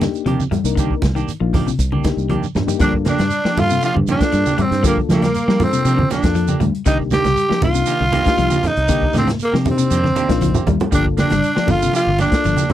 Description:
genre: afrobeat.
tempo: 118 BPM.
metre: 4/4.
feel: straight.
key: G minor.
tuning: A4 = 440 Hz.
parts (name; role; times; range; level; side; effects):
reed electric piano; accompaniment; 0.0-12.6 s; Bb3 to Bb4; -24 LUFS; left 13 dB; none.
clean electric guitar; arpeggios; 0.0-12.7 s; C3 to Bb3; -23 LUFS; left 7 dB; none.
semi-hollow electric guitar; stabs; 0.0-12.7 s; Eb3 to G4; -25 LUFS; right 7 dB; phaser.
fingered electric bass; bass; 0.0-12.7 s; G1 to G3; -20 LUFS; equal; none.
vintage drum kit; drums; 0.0-12.7 s; hi-hat, kick drum, snare drum, toms; -21 LUFS; equal; none.
congas; percussion; 0.0-12.7 s; none; -22 LUFS; right 3 dB; none.
shekere; percussion; 0.0-12.7 s; none; -31 LUFS; right 8 dB; none.
growling tenor saxophone; melody; 2.8-12.7 s; Bb3 to G4; -20 LUFS; equal; none.
raspy alto saxophone; second line; 2.8-12.7 s; Bb3 to G4; -23 LUFS; right 3 dB; none.
room: little or no reverb.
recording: dry, close 1970s-style studio recording.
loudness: -14 LUFS.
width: side -12 dB against mid.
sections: 0.0-2.8 A section; 2.8-12.7 B section.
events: drum fill 2.6, 10.4-10.9.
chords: 0.0 Cm9; 2.8 Gm7; 6.9 Cm9; 10.9 Gm7.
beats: 0.27 | 0.77 1.28 1.79 2.30 | 2.81 3.31 3.82 4.33 | 4.83 5.34 5.85 6.36 | 6.87 7.37 7.88 8.39 | 8.89 9.40 9.91 10.41 | 10.92 11.43 11.93 12.44.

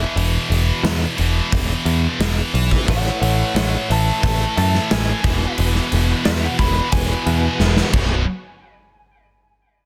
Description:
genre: hard rock.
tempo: 89 BPM.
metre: 4/4.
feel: straight.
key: unclear.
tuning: A4 = 440 Hz.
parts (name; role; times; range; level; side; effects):
lightly driven lead guitar; melody; 0.0-8.2 s; C#5 to B5; -29 LUFS; equal; digital delay.
heavy high-gain guitar; riff; 0.0-8.2 s; B1 to A3; -25 LUFS; equal; distortion.
picked electric bass; bass; 0.0-8.2 s; B0 to F#2; -21 LUFS; equal; none.
gated 80s drum kit; drums; 0.2-8.1 s; crash cymbal, hi-hat, kick drum, snare drum; -24 LUFS; equal; none.
bright tonewheel organ; sustained chords; 2.9-8.2 s; E3 to C#5; -32 LUFS; equal; slow rotary speaker, chorus vibrato.
room: light reverb.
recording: dense, heavily limited modern master, faint mains hum.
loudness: -18 LUFS.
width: mono.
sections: 0.0-8.3 A section; 8.3-9.9 B section.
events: lead electric guitar solo 0.0-8.3; drum fill 7.6-8.3.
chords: 0.0 E5; 2.9 A; 5.2 E; 7.9 B5; 8.3 N.C..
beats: | 0.17 0.84 1.52 2.20 | 2.88 3.55 4.23 4.90 | 5.58 6.25 6.93 7.60.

